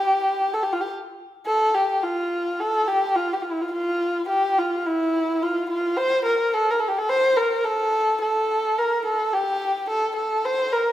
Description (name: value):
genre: turkish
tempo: 107 BPM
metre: 4/4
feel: straight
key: F makam rast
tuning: A4 = 440 Hz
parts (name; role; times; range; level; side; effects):
- dark kamancheh; solo; 0.0-10.9 s; E4-24c to C5; -20 LUFS; equal; none
room: wet recital hall reverb, RT60 1.6 s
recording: minimal, uncompressed stereo recording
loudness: -20 LUFS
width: side -13 dB against mid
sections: 0.0-1.5 A section; 1.5-10.9 B section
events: none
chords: none